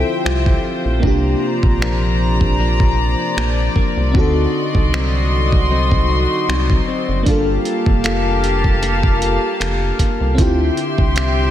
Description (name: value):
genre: contemporary R&B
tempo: 77 BPM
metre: 4/4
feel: swing 54% on 16ths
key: D minor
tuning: A4 = 439 Hz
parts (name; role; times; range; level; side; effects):
- FM electric piano with soft pad layer; accompaniment; 0.0-11.5 s; Bb3 to A4; -22 LUFS; right 1 dB; chorus
- warm studio string section; sustained chords; 0.0-11.5 s; F3 to C6; -21 LUFS; left 2 dB; none
- direct-recorded clean electric guitar; arpeggios; 0.0-11.5 s; C3 to A4; -24 LUFS; left 6 dB; wide subtle chorus, ping-pong delay
- rubbery square bass; bass; 0.0-11.5 s; F1 to D2; -18 LUFS; equal; none
- dusty soul sampler-style drum kit; drums; 0.3-11.4 s; finger snaps, hi-hat, kick drum; -18 LUFS; equal; overdrive
room: moderate lush hall reverb, RT60 2.2 s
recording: dreamy mix soaked in reverb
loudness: -14 LUFS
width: side -11 dB against mid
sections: 0.0-11.5 A section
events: none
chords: 0.0 Dm11; 1.0 C9sus4; 4.1 D7b9; 7.3 Gm9; 10.4 Dm11